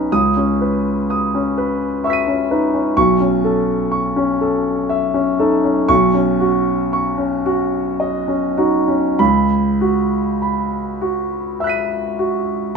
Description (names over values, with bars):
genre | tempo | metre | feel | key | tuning
classical, impressionist solo piano | 32-44 BPM (dotted quarters) | 6/8 | rubato | C# minor | A4 = 440 Hz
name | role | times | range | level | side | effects
warm concert grand piano | solo | 0.0-12.8 s | B1 to D#7 | -15 LUFS | equal | none
room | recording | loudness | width
moderate stone room reverb, RT60 1.2 s | none | -15 LUFS | side -5 dB against mid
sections
0.0-12.8 A section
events
none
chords
0.1 C#m9; 3.0 B9sus4; 5.9 Badd9; 9.2 C#m11